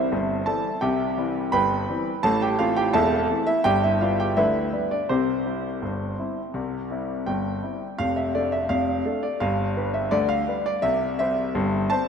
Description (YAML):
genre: ragtime piano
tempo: 84 BPM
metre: 2/4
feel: straight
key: C major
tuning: A4 = 439 Hz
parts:
  - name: clear concert grand piano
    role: solo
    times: 0.0-12.1 s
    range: E1 to B5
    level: -21 LUFS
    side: equal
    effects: none
room: wet lush hall reverb, RT60 3.4 s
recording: rough home demo mix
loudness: -22 LUFS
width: side -6 dB against mid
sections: 0.0-8.0 A section; 8.0-12.1 A section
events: none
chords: 0.0 C; 2.2 Am; 3.7 G; 5.1 C; 8.0 Dm/F; 9.4 G; 10.8 C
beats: 0.11 | 0.82 1.53 | 2.24 2.95 | 3.67 4.38 | 5.10 5.82 | 6.54 7.27 | 7.99 8.71 | 9.42 10.13 | 10.84 11.55